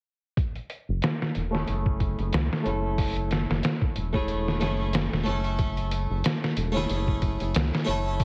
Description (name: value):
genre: trip hop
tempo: 92 BPM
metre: 4/4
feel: swing 56% on 16ths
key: F# minor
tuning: A4 = 436 Hz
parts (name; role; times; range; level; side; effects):
- trip hop sampler-style drum kit; drums; 0.4-8.2 s; hi-hat, kick drum, snare drum; -29 LUFS; equal; low-pass filter on kick, studio reverb, low-pass filter on hats, low-pass filter on snare
- round analog bass; bass; 0.9-8.2 s; E1 to C#2; -31 LUFS; equal; tube saturation
- harpsichord; accompaniment; 1.5-8.2 s; A3 to A4; -33 LUFS; equal; harmonic tremolo, low-pass filter, tape echo
room: light reverb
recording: heavily compressed radio sound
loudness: -27 LUFS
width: mono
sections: 0.4-8.2 A section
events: filter sweep on harpsichord 0.4-8.2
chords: 0.4 F#m9